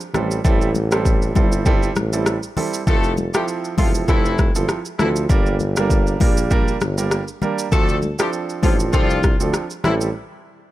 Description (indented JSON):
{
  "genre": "afrobeats",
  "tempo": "99 BPM",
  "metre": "4/4",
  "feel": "swing 55% on 16ths",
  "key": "G dorian",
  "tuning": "A4 = 440 Hz",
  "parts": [
    { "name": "afro-pop drum kit", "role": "drums", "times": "0.0-10.1 s", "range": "hi-hat, kick drum, rim click, shaker", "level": "-19 LUFS", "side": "equal", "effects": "none" },
    { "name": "warm baby grand piano", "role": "accompaniment", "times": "0.1-10.1 s", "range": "F3 to Bb4", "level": "-23 LUFS", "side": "right 5 dB", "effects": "none" },
    { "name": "mellow tuba", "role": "bass", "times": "0.1-10.1 s", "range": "E1 to D2", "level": "-22 LUFS", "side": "equal", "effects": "none" },
    { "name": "congas", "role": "percussion", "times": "0.1-10.0 s", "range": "none", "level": "-28 LUFS", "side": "left 4 dB", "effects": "none" },
    { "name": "mellow horn section", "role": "second line", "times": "2.9-9.9 s", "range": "E3 to A4", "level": "-25 LUFS", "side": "left 5 dB", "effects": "none" }
  ],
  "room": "studio reverb",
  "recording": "none",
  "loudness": "-16 LUFS",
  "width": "side -15 dB against mid",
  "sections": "0.0-10.7 A section",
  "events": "break 10.1-10.7",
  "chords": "0.1 Am7; 2.9 Fmaj7; 5.3 Gm; 7.7 Dm7; 9.8 Am7"
}